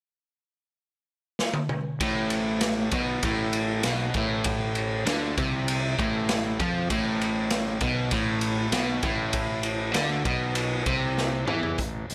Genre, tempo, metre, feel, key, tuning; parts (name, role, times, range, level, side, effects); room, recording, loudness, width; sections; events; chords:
classic rock; 98 BPM; 4/4; straight; A minor; A4 = 440 Hz
raw garage drum kit; drums; 1.4-12.1 s; hi-hat, kick drum, ride cymbal, snare drum, toms; -31 LUFS; equal
crunchy overdriven guitar; riff; 2.0-11.8 s; A2 to F3; -29 LUFS; equal
fuzz fingered electric bass; bass; 2.0-12.1 s; A1 to F2; -35 LUFS; equal; overdrive
small room ambience; -26 LUFS; mono
0.0-2.0 A section; 2.0-11.8 B section
drum fill 1.4-2.0, 11.2-11.8
0.0 N.C.; 2.0 Am